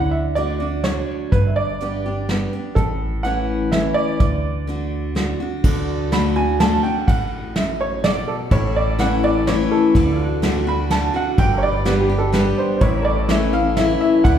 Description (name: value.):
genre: honky-tonk and classic country.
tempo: 125 BPM.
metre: 3/4.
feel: straight.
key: D major.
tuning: A4 = 438 Hz.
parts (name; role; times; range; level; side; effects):
bright upright piano; second line; 0.0-14.4 s; G4 to B5; -23 LUFS; right 3 dB; none.
picked steel-string acoustic guitar; accompaniment; 0.0-14.4 s; F#2 to G4; -21 LUFS; left 2 dB; none.
upright bass; bass; 0.0-14.4 s; G1 to D2; -24 LUFS; equal; none.
soft brush drum kit; drums; 0.4-14.4 s; crash cymbal, hi-hat, kick drum, ride cymbal, snare drum; -22 LUFS; equal; none.
pedal steel guitar; sustained chords; 5.7-14.4 s; E4 to D5; -28 LUFS; equal; none.
room: wet large studio reverb, RT60 1.4 s.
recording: heard from further back in the room.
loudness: -17 LUFS.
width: side -9 dB against mid.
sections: 0.0-5.6 A section; 5.6-14.4 B section.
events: upright piano solo 0.0-5.6, 5.6-14.4.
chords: 0.0 D; 1.3 G; 2.8 A; 4.2 D; 8.5 A; 10.0 D; 11.4 G; 12.8 A.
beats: 0.36 0.84 | 1.32 1.80 2.29 | 2.77 3.25 3.73 | 4.21 4.68 5.16 | 5.64 6.12 6.60 | 7.08 7.56 8.04 | 8.52 8.99 9.47 | 9.95 10.43 10.91 | 11.38 11.86 12.34 | 12.82 13.30 13.78 | 14.25.